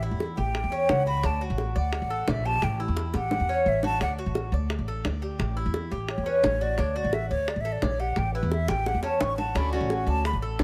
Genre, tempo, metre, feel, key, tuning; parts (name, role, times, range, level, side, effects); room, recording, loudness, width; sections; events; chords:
latin, Cuban son and guajira; 173 BPM; 4/4; straight; D major; A4 = 440 Hz
breathy mellow silver concert flute; melody; 0.0-10.4 s; B4 to C#6; -32 LUFS; equal
Cuban tres; arpeggios; 0.0-10.6 s; C#4 to D5; -33 LUFS; equal
upright bass; bass; 0.0-10.6 s; A1 to E2; -31 LUFS; equal
bongos; percussion; 0.2-10.6 s; -34 LUFS; equal
picked plugged-in steel-string acoustic guitar; accompaniment; 9.5-10.6 s; D3 to F#4; -34 LUFS; equal
light reverb; -27 LUFS; mono
0.0-10.6 A section
flute solo 0.0-10.6; drum fill 3.0-4.0, 8.7-9.6
0.0 A7; 1.2 D; 2.6 A7; 4.0 D; 5.4 A7; 6.8 D; 8.2 A7; 9.6 Dmaj7